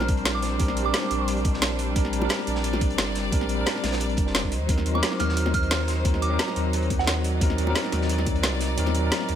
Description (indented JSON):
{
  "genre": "liquid drum and bass",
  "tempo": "176 BPM",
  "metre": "4/4",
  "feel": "straight",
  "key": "Bb major",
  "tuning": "A4 = 443 Hz",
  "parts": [
    { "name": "soft synth bell", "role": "melody", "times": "0.0-1.3, 4.9-7.3 s", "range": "Gb5 to F6", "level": "-31 LUFS", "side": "right 4 dB", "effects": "chorus, phaser, dub echo" },
    { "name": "bell-like tine electric piano", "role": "accompaniment", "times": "0.0-9.4 s", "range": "Gb3 to C5", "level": "-28 LUFS", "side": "equal", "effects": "medium stereo tremolo, tape echo" },
    { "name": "clear studio string section", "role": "sustained chords", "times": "0.0-9.4 s", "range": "Gb3 to D5", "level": "-32 LUFS", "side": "left 1 dB", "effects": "sidechain pumping" },
    { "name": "sub bass with octave", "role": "bass", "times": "0.0-9.4 s", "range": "F1 to Eb2", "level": "-27 LUFS", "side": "equal", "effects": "none" },
    { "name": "garage drum kit", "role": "drums", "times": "0.0-9.4 s", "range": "hi-hat, snare drum", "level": "-28 LUFS", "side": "equal", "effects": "overdrive" },
    { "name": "bongos", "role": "percussion", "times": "0.0-0.1, 2.2-2.8, 5.0-5.5, 7.7-8.9 s", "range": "none", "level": "-33 LUFS", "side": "left 4 dB", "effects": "none" },
    { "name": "crunchy breakbeat drum kit", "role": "drums", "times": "0.1-9.4 s", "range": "hi-hat, snare drum", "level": "-35 LUFS", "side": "equal", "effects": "high-pass filter on hats, high-pass filter on snare, high-pass filter on room" },
    { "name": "electronic kick drum", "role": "drums", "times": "0.1-8.3 s", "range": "none", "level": "-25 LUFS", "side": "equal", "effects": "overdrive" }
  ],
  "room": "light reverb, small room ambience",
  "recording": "none",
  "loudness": "-22 LUFS",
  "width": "side -9 dB against mid",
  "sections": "0.0-9.4 A section",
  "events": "kick drops out 8.8-9.4",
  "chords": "0.0 Bb69; 4.5 Ebm6"
}